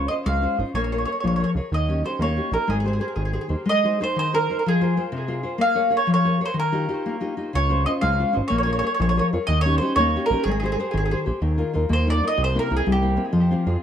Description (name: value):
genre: italian folk, Italian serenade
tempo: 124 BPM (dotted quarters)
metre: 6/8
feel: straight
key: Ab major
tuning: A4 = 440 Hz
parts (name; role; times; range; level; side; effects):
- mandolin; melody; 0.0-13.2 s; G4 to F5; -24 LUFS; right 2 dB; tape echo
- nylon-string guitar; accompaniment; 0.0-13.8 s; C3 to Db5; -24 LUFS; left 3 dB; none
- fat analog bass; bass; 0.0-3.6, 7.6-13.8 s; Ab1 to F2; -23 LUFS; right 1 dB; none
room: moderate studio reverb, RT60 0.7 s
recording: dark, warm production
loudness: -20 LUFS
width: side -9 dB against mid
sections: 0.0-3.7 A section; 3.7-11.4 A section; 11.4-13.8 B section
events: none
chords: 0.0 Dbmaj7; 0.7 Bbm7; 1.7 Eb7; 2.7 Abmaj7; 3.7 Ab; 4.6 Fm; 5.6 Bbm7; 6.6 Ebadd9; 7.5 Dbmaj7; 8.5 Bbm7; 9.5 Eb7; 10.4 Abmaj7; 11.4 Ebsus2; 12.4 C7